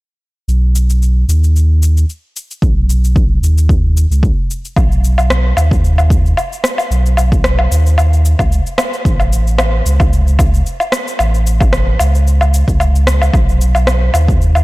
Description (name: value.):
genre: organic downtempo.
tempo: 112 BPM.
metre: 4/4.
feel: swing 54% on 16ths.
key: B mixolydian.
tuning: A4 = 440 Hz.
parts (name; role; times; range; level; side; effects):
warm sub bass; bass; 0.5-14.6 s; A1 to D#2; -11 LUFS; equal; sidechain pumping.
electronic cabasa, woodblock and rim click; drums; 0.5-14.6 s; none; -18 LUFS; left 1 dB; overdrive.
electronic kick drum; drums; 2.6-14.4 s; none; -14 LUFS; equal; overdrive.
room: digital ambience.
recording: blown-out, overdriven recording, overdrive.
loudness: -10 LUFS.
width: side -20 dB against mid.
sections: 0.5-4.8 A section; 4.8-14.6 B section.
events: filter sweep on sub bass 0.5-4.8.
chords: none.